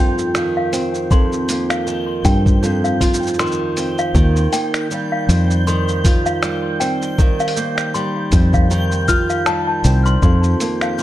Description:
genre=folktronica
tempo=79 BPM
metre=4/4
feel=swing 56% on 16ths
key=unclear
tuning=A4 = 440 Hz
part: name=toy piano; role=second line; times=0.0-10.9 s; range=F5 to F6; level=-24 LUFS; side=left 3 dB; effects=tape echo
part: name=flamenco guitar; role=arpeggios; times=0.0-11.0 s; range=F2 to F4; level=-20 LUFS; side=right 1 dB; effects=tape echo
part: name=fingered electric bass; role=bass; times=0.0-10.5 s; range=C2 to G2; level=-17 LUFS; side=equal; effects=tube saturation
part: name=backwards swelling texture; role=texture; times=0.0-11.0 s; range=G6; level=-29 LUFS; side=right 1 dB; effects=built-in reverb
part: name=lo-fi sampler-style drum kit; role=drums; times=0.2-11.0 s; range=finger snaps, hi-hat, shaker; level=-25 LUFS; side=equal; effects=overdrive, studio reverb
part: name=electronic kick drum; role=drums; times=1.1-10.4 s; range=none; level=-15 LUFS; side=equal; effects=studio reverb
room=light reverb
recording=dark, warm production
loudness=-14 LUFS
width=side -14 dB against mid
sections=0.0-11.0 A section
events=none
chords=0.0 F7sus4; 4.1 Eb69; 10.2 F7sus4

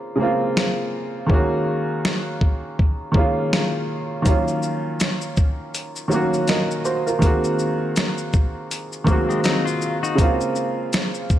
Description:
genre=lo-fi hip hop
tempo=81 BPM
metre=4/4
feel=swing 58% on 16ths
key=Eb dorian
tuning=A4 = 436 Hz
part: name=warm upright piano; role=accompaniment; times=0.0-11.4 s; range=Db3 to Eb5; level=-21 LUFS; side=right 1 dB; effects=none
part: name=dusty soul sampler-style drum kit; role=drums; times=0.6-11.4 s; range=finger snaps, hi-hat, kick drum, shaker, snare drum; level=-20 LUFS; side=equal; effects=overdrive
part: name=semi-hollow electric guitar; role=second line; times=9.1-10.4 s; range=Gb3 to Gb4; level=-26 LUFS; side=left 6 dB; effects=analog delay
room=light reverb, digital ambience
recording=none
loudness=-19 LUFS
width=side -12 dB against mid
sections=0.0-11.4 A section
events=break 0.0-4.3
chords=0.0 Bbm9; 1.3 Gb69; 4.3 Ebm9; 7.2 Ab9; 10.2 Bbm9

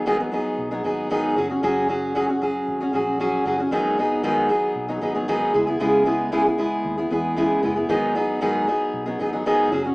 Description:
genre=pop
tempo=115 BPM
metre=4/4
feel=straight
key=G# minor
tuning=A4 = 440 Hz
part: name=fingerpicked steel-string acoustic guitar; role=accompaniment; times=0.0-9.9 s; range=G#2 to G#4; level=-20 LUFS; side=equal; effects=none
part: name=vintage muted fingered electric bass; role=bass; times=0.0-9.9 s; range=F#1 to E2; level=-38 LUFS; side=equal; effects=none
room=wet large studio reverb, RT60 1.1 s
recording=band playing live in one room, small speaker sound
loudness=-20 LUFS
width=side -26 dB against mid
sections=0.0-9.9 A section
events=none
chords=0.0 G#m7; 1.4 F#sus2; 3.7 G#m7; 5.5 C#m7; 7.9 G#m7

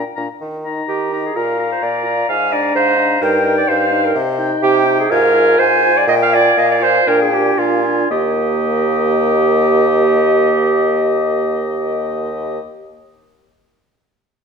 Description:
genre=quick classical-period movement for wind quintet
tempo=114-130 BPM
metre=4/4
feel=straight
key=Eb major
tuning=A4 = 440 Hz
part: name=bright concert flute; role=melody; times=0.0-12.6 s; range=Eb5 to Ab5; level=-21 LUFS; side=left 12 dB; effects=none
part: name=warm oboe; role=second line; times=0.0-12.6 s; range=Eb5 to Bb5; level=-22 LUFS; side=left 6 dB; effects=none
part: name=clear clarinet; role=accompaniment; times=0.0-12.6 s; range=F4 to F5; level=-15 LUFS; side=right 5 dB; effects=none
part: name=mellow French horn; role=accompaniment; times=0.0-12.6 s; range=Bb3 to F4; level=-24 LUFS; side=left 2 dB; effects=none
part: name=warm bassoon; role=bass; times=0.0-12.6 s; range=Eb2 to Eb3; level=-20 LUFS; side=right 1 dB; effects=none
room=wet recital hall reverb, RT60 1.6 s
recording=none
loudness=-13 LUFS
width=side -6 dB against mid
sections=0.0-8.1 A section; 8.1-12.2 B section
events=slowing down 3.2-8.1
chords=0.4 Eb5; 1.4 Bb; 2.3 Bb7/Ab; 3.2 Eb/G; 4.2 Cm; 5.1 Fm/Ab; 6.1 Bb5; 7.1 Bb7; 8.1 Eb

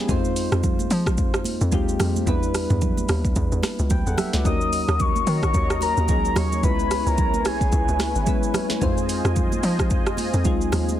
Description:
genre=amapiano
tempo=110 BPM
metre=4/4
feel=swing 58% on 16ths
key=unclear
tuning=A4 = 440 Hz
part: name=soft electric-piano-like synth keys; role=accompaniment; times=0.0-11.0 s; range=Gb3 to G5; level=-27 LUFS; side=left 2 dB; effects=chorus
part: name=hollow log drum bass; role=bass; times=0.1-11.0 s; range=Ab1 to F3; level=-24 LUFS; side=equal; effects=none
part: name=afro-pop drum kit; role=drums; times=0.1-11.0 s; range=hi-hat, kick drum, rim click, shaker, snare drum, toms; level=-24 LUFS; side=equal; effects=vintage 12-bit sampler grit, soft clipping on snare
part: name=congas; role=percussion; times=0.6-11.0 s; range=none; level=-32 LUFS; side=right 6 dB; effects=none
part: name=soft octave-layered synth lead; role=melody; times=4.5-8.3 s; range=Ab5 to Eb6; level=-26 LUFS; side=left 2 dB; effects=chorus, phaser, digital delay
part: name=warm analog pad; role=sustained chords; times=4.5-11.0 s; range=Fb4 to Bb5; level=-31 LUFS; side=left 1 dB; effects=chorus, sidechain pumping
room=digital ambience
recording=dense, heavily limited modern master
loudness=-19 LUFS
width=side -12 dB against mid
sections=0.0-11.0 A section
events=none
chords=0.1 Fm7; 2.3 Em7; 4.5 Ebm7; 6.6 Dbm7; 8.8 Fm7

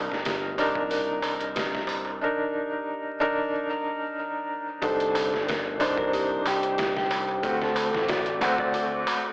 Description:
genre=trip hop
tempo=92 BPM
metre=4/4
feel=straight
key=unclear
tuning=A4 = 437 Hz
part: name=felt-muted upright piano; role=accompaniment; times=0.0-9.3 s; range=A3 to C5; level=-27 LUFS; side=equal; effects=tremolo, tape echo
part: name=dark detuned synth bell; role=arpeggios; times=0.0-9.3 s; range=F#4 to Bb4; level=-34 LUFS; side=left 1 dB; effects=chorus, tape echo
part: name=growling fingered electric bass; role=bass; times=0.0-9.0 s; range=G1 to D2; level=-36 LUFS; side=equal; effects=overdrive
part: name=trip hop sampler-style drum kit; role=drums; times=0.1-9.2 s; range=hi-hat, kick drum, snare drum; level=-32 LUFS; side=equal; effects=overdrive
part: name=darbuka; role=percussion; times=0.1-9.3 s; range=none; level=-33 LUFS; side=equal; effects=none
part: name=mellow electric guitar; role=melody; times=4.8-9.0 s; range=G4 to D5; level=-28 LUFS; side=equal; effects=spring reverb, tape echo
part: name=deep dark ambient pad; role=sustained chords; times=6.3-9.3 s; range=C5 to D6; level=-37 LUFS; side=equal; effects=none
room=light reverb, digital ambience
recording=dry, gritty hardware recording, transformer saturation, vinyl crackle, AM radio sound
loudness=-24 LUFS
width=side -26 dB against mid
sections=0.0-4.8 A section; 4.8-9.3 B section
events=none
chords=0.0 Cm7; 7.4 D7

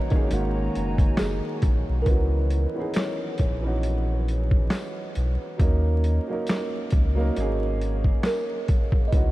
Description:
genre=lo-fi hip hop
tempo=68 BPM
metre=4/4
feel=swing 56% on 16ths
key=C# dorian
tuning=A4 = 441 Hz
part: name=kalimba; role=melody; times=0.0-9.3 s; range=G#4 to D#5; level=-33 LUFS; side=right 1 dB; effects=low-pass filter
part: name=warm upright piano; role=accompaniment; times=0.0-9.3 s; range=D#3 to A#4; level=-29 LUFS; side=right 2 dB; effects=low-pass filter
part: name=hollow soft pad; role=sustained chords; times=0.0-2.1 s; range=D#4 to A#5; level=-41 LUFS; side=equal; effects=chorus, low-pass filter
part: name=boom bap sampler-style drum kit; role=drums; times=0.1-9.3 s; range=finger snaps, hi-hat, kick drum, snare drum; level=-24 LUFS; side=equal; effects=none
part: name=soft dub sub bass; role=bass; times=0.3-9.3 s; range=F#1 to D#2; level=-24 LUFS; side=equal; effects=none
part: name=tambourine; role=percussion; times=1.2-8.5 s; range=none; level=-57 LUFS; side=left 5 dB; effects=none
room=light reverb, small room ambience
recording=vinyl crackle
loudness=-22 LUFS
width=side -17 dB against mid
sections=0.0-2.1 A section; 2.1-9.3 B section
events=none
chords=0.3 G#9sus4; 2.1 C#m11; 5.6 D#m7; 7.4 G#9sus4

